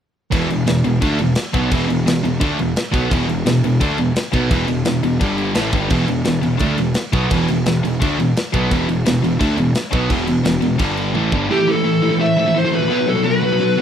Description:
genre	heavy metal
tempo	172 BPM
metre	4/4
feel	straight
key	E minor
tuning	A4 = 440 Hz
part	scooped high-gain guitar	riff	0.3-13.8 s	E2 to D4	-28 LUFS	equal	none
part	sludgy distorted guitar	riff	0.3-13.8 s	E2 to D4	-20 LUFS	right 7 dB	overdrive
part	tight distorted guitar	riff	0.3-13.8 s	E2 to D4	-21 LUFS	left 8 dB	distortion
part	fuzz picked electric bass	bass	0.3-11.5 s	E1 to D2	-23 LUFS	equal	overdrive
part	tight metal drum kit	drums	0.3-11.4 s	crash cymbal, kick drum, snare drum, toms	-22 LUFS	equal	none
part	high-gain lead guitar	melody	11.5-13.8 s	G4 to E5	-17 LUFS	left 2 dB	distortion
part	smooth overdriven lead guitar	second line	11.5-13.8 s	E4 to C5	-30 LUFS	right 3 dB	none
part	pipe organ, principal	sustained chords	11.5-13.8 s	A3 to F#5	-32 LUFS	equal	none
room	little or no reverb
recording	rough home demo mix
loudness	-15 LUFS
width	side -9 dB against mid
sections	0.3-11.5 A section; 11.5-13.8 B section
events	drum fill 11.2-11.5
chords	0.3 E5; 5.2 G5; 5.6 Em; 10.8 G5; 11.2 Em; 11.5 Am; 12.9 B5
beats	| 0.31 0.66 1.01 1.36 | 1.71 2.06 2.41 2.76 | 3.11 3.46 3.81 4.16 | 4.51 4.86 5.21 5.56 | 5.91 6.26 6.61 6.96 | 7.31 7.66 8.01 8.36 | 8.71 9.05 9.40 9.75 | 10.10 10.45 10.80 11.15 | 11.50 11.85 12.20 12.55 | 12.90 13.25 13.60

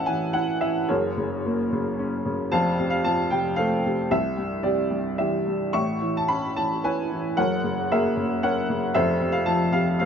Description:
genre	classical, lyrical solo piano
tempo	112 BPM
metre	3/4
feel	uneven beats, rubato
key	unclear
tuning	A4 = 440 Hz
part	clear upright piano	solo	0.0-10.1 s	F1 to C#6	-22 LUFS	equal	none
room	moderate small room reverb, RT60 0.5 s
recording	nothing above 7.5 kHz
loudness	-22 LUFS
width	side -7 dB against mid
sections	0.0-10.1 A section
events	none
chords	0.0 Aadd9; 0.9 F#add9; 2.5 F; 4.1 Cadd9; 5.7 Aadd9; 7.4 F#add9; 9.0 F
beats	0.35 | 0.90 1.45 1.99 | 2.52 3.05 3.58 | 4.11 4.64 5.19 | 5.74 6.30 6.84 | 7.38 7.91 8.43 | 8.95 9.47 10.00

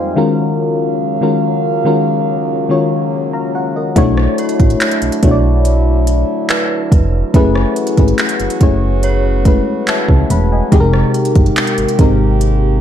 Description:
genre	contemporary R&B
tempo	71 BPM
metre	4/4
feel	straight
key	unclear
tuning	A4 = 435 Hz
part	mellow FM electric piano	accompaniment	0.0-12.8 s	F2 to Cb6	-15 LUFS	left 3 dB	chorus
part	warm French horn section	sustained chords	0.0-12.8 s	Eb2 to F5	-22 LUFS	right 6 dB	stereo widening, sidechain pumping
part	solid FM bass	bass	4.0-12.8 s	Fb1 to Db2	-14 LUFS	right 1 dB	none
part	smooth R&B drum kit	drums	4.0-12.6 s	handclaps, hi-hat, kick drum, rim click	-14 LUFS	right 1 dB	none
part	synth chime	texture	4.4-11.1 s	B4 to C#5	-27 LUFS	right 4 dB	ensemble chorus, digital delay
room	digital ambience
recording	dark, warm production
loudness	-11 LUFS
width	side -10 dB against mid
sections	0.0-12.8 A section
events	none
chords	0.2 Ebm11; 4.0 Bm11; 7.3 Gbm11; 10.7 Fm11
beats	| 0.58 1.42 2.27 3.11 | 3.96 4.80 5.65 6.49 | 7.34 8.19 9.03 9.88 | 10.72 11.56 12.41

